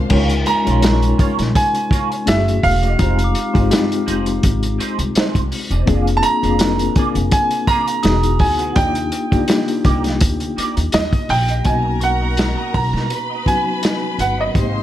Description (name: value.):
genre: lush 1970s-style soul.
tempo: 83 BPM.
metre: 4/4.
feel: swing 54% on 16ths.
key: unclear.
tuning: A4 = 443 Hz.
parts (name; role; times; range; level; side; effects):
warm studio string section; second line; 0.0-0.1, 11.7-14.8 s; A#4 to C6; -27 LUFS; left 2 dB; slapback echo.
mellow reed electric piano; accompaniment; 0.0-14.8 s; F#3 to Db5; -21 LUFS; left 4 dB; fast tremolo.
upright bass; bass; 0.0-14.8 s; Fb1 to B2; -20 LUFS; equal; none.
clean electric guitar; riff; 0.1-14.8 s; A3 to Gb5; -28 LUFS; right 7 dB; wah, ensemble chorus.
vintage drum kit; drums; 0.1-14.7 s; crash cymbal, hi-hat, kick drum, snare drum; -19 LUFS; equal; none.
clear grand piano; melody; 0.5-14.8 s; Eb5 to Bb5; -20 LUFS; right 2 dB; none.
glockenspiel with soft plastic mallets; texture; 0.5-13.2 s; Ab5 to D#6; -33 LUFS; left 2 dB; none.
room: light reverb, small room ambience.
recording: none.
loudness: -14 LUFS.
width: side -12 dB against mid.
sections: 0.1-11.7 A section; 11.7-14.8 B section.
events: none.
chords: 0.1 Db6; 2.3 Gbm7; 3.0 Fm7; 5.9 Bb7/F; 8.0 Emaj7; 8.8 Ebmaj7; 11.7 Bmaj7.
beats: | 0.11 0.83 1.55 2.27 | 2.99 3.71 4.44 5.16 | 5.88 6.60 7.32 8.04 | 8.77 9.49 10.21 10.93 | 11.66 12.38 13.10 13.82 | 14.54.